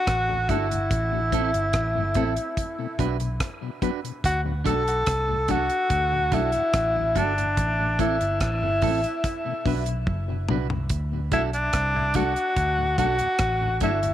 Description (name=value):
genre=roots reggae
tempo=72 BPM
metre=4/4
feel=straight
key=D mixolydian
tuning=A4 = 441 Hz
part: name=breathy tenor saxophone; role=melody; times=0.0-14.1 s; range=D4 to A4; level=-24 LUFS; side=left 1 dB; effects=tape echo
part: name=vintage muted fingered electric bass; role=bass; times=0.1-14.1 s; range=F#1 to D2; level=-27 LUFS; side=equal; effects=none
part: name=deep reggae drum kit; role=drums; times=0.1-14.1 s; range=hi-hat, kick drum, rim click, toms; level=-29 LUFS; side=equal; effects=none
part: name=mellow tonewheel organ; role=accompaniment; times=0.3-14.1 s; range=D2 to F#4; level=-33 LUFS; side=left 9 dB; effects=chorus vibrato, slow rotary speaker, tape echo
part: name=clean electric guitar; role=accompaniment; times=0.5-14.0 s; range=C4 to B4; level=-32 LUFS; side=right 11 dB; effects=tape echo
room=moderate spring reverb, RT60 2.9 s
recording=1960s-style stereo with parts hard left and right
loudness=-22 LUFS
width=side -12 dB against mid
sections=0.0-14.1 A section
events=drum fill 10.1-10.9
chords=0.0 D; 0.9 Am; 2.6 Bm; 4.2 D; 7.6 Am; 9.2 Bm; 10.9 D